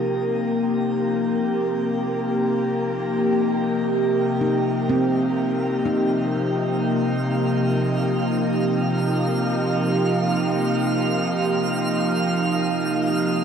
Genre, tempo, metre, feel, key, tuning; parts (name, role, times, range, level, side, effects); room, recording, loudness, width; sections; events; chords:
ambient; free time; A4 = 438 Hz
evolving wavetable pad; sustained chords; 0.0-13.4 s; C3 to G4; -20 LUFS; equal; chorus, built-in reverb
twinkling granular texture; texture; 4.5-13.4 s; F5; -29 LUFS; right 1 dB; built-in reverb
handpan; arpeggios; 4.4-6.8 s; C4 to Eb4; -28 LUFS; right 1 dB; tape echo
wet shimmer reverb, RT60 8.3 s; -20 LUFS; side -7 dB against mid
0.0-3.4 A section; 3.4-13.4 B section
fade-in on synth texture 3.4-13.4
0.0 Eb69/C